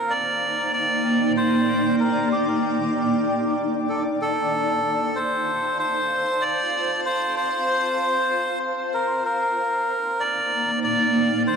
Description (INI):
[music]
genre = ambient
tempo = 95 BPM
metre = 4/4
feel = straight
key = unclear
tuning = A4 = 440 Hz
[part]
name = melodica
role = melody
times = 0.0-11.6 s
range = G4 to D5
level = -22 LUFS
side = equal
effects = dub echo
[part]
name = granular cloud pad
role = sustained chords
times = 0.0-11.6 s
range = Bb3 to A5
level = -24 LUFS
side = equal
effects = built-in reverb
[sound]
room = wet echo chamber reverb, RT60 2.0 s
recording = none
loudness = -20 LUFS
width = side -6 dB against mid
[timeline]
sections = 0.0-11.6 A section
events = none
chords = 0.0 Ebmaj7; 4.5 F; 9.6 Ebmaj7